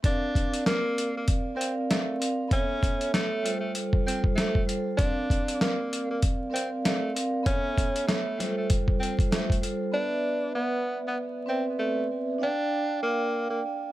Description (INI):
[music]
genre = hip hop, boom-bap hip-hop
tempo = 97 BPM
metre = 4/4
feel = swing 59% on 16ths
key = C major from 9.9 s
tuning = A4 = 440 Hz
[part]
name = vibraphone with medium mallets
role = accompaniment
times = 0.0-13.9 s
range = G3 to G5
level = -30 LUFS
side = right 2 dB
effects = cassette tape, high-pass filter, low-pass filter, plate reverb
[part]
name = dusty soul sampler-style drum kit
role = drums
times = 0.0-9.8 s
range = hi-hat, kick drum, snare drum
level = -26 LUFS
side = equal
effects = overdrive
[part]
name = breathy tenor saxophone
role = melody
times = 0.1-13.6 s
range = A3 to D4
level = -30 LUFS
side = equal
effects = high-pass filter, low-pass filter, plate reverb
[sound]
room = moderate studio reverb, RT60 0.5 s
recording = vinyl crackle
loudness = -25 LUFS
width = side -15 dB against mid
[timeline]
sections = 0.0-9.9 A section; 9.9-13.9 B section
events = none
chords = 0.0 C9sus4; 2.5 B9sus4; 3.4 G9sus4; 5.0 C9sus4; 7.5 B9sus4; 8.4 G9sus4; 9.9 Cmaj9; 12.4 Ebmaj9 (rootless)